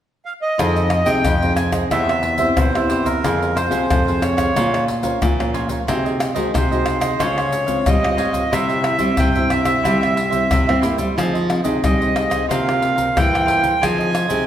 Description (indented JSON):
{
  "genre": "samba and choro",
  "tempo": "91 BPM",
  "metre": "4/4",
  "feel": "straight",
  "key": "F minor",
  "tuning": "A4 = 441 Hz",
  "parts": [
    { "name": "accordion", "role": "melody", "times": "0.3-14.4 s", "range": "Bb4 to Ab5", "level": "-21 LUFS", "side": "right 1 dB", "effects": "none" },
    { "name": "cavaquinho", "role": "accompaniment", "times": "0.6-14.5 s", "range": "E4 to F5", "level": "-24 LUFS", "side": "right 4 dB", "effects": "none" },
    { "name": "nylon-string guitar", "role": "accompaniment", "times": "0.6-14.5 s", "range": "G2 to C5", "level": "-24 LUFS", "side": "left 2 dB", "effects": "none" },
    { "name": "nylon-string guitar", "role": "bass", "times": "0.6-14.5 s", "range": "E2 to C4", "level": "-22 LUFS", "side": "equal", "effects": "none" },
    { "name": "tube shaker, surdo, pandeiro and tamborim", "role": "percussion", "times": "0.6-14.5 s", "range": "none", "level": "-22 LUFS", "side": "left 1 dB", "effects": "none" }
  ],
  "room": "wet recital hall reverb, RT60 1.5 s",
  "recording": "recorded in a church or concert hall",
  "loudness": "-16 LUFS",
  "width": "side -10 dB against mid",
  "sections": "0.6-14.5 A section",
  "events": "none",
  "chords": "0.0 N.C.; 0.6 Fm7; 1.9 C/E; 3.2 Fm; 4.6 Bbmadd9; 5.9 Ab7/C; 7.2 Dbmaj7; 8.5 C; 11.2 Fm7; 12.5 C7sus4; 13.8 Fm7"
}